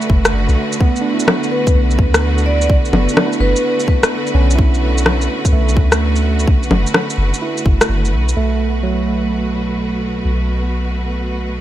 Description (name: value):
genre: future garage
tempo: 127 BPM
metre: 4/4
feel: swing 66% on 16ths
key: B minor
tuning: A4 = 440 Hz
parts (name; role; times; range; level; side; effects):
- barky tine electric piano; accompaniment; 0.0-11.6 s; F#3 to E4; -21 LUFS; right 4 dB; sidechain pumping, ping-pong delay
- clear studio string section; sustained chords; 0.0-11.6 s; B2 to B4; -22 LUFS; equal; sidechain pumping
- electronic shaker, rim click and bongos; drums; 0.0-8.3 s; none; -16 LUFS; left 1 dB; low-pass filter on perc, low-pass filter on snare
- soft 808-style bass; bass; 0.1-11.6 s; F#1 to D2; -17 LUFS; equal; tube saturation, sidechain pumping
- electronic kick drum; drums; 0.1-7.8 s; none; -13 LUFS; equal; none
- vibraphone with medium mallets; melody; 1.5-3.8 s; B4 to D5; -21 LUFS; equal; digital delay
room: digital ambience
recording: none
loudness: -13 LUFS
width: side -13 dB against mid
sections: 0.0-8.4 A section; 8.4-11.6 B section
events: none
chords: 0.0 Bm7; 8.4 B7(no3)